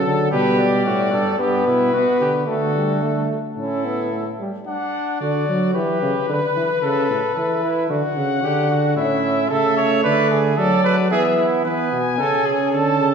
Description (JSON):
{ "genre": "classical, imitative canzona for brass ensemble", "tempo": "111 BPM", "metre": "4/4", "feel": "straight", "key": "D major", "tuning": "A4 = 440 Hz", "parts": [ { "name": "clear cornet", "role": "melody", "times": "0.0-13.1 s", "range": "A4 to A5", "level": "-23 LUFS", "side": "left 6 dB", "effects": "none" }, { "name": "clear trumpet", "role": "second line", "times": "0.0-13.1 s", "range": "D4 to C#5", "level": "-23 LUFS", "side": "right 3 dB", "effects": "none" }, { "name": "clear trombone", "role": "accompaniment", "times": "0.0-4.5, 9.0-13.1 s", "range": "F#3 to C#4", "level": "-22 LUFS", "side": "right 2 dB", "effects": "none" }, { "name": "warm bass trombone", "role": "bass", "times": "0.0-13.1 s", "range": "G2 to F#3", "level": "-22 LUFS", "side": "right 1 dB", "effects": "none" } ], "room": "wet recital hall reverb, RT60 1.7 s", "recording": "heard from further back in the room", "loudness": "-17 LUFS", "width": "side -6 dB against mid", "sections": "0.0-4.7 A section; 4.7-13.1 B section", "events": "none", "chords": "0.3 G/B; 1.4 G; 2.5 Asus4/D; 3.6 A; 4.7 D; 5.7 Em; 6.8 A; 7.9 D; 9.0 A; 10.0 Bm/D; 11.1 E; 12.2 A/C#" }